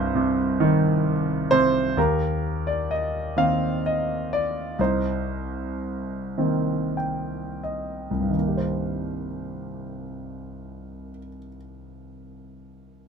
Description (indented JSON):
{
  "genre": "classical, lyrical solo piano",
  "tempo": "27-45 BPM (dotted quarters)",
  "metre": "6/8",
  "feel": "rubato",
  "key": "C minor",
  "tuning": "A4 = 440 Hz",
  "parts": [
    { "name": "clear concert grand piano", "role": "solo", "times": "0.0-13.1 s", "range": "C2 to G5", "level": "-23 LUFS", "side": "right 1 dB", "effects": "none" }
  ],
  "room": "moderate small room reverb, RT60 0.6 s",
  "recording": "minimal, uncompressed stereo recording",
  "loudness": "-22 LUFS",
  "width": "side -6 dB against mid",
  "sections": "0.0-2.0 A section; 2.0-8.3 B section; 8.3-12.6 C section",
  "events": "slowing down 2.0-8.3; grand piano fill 6.4-8.3",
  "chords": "0.0 Cm; 2.0 Cm7/Eb; 4.8 Cm7"
}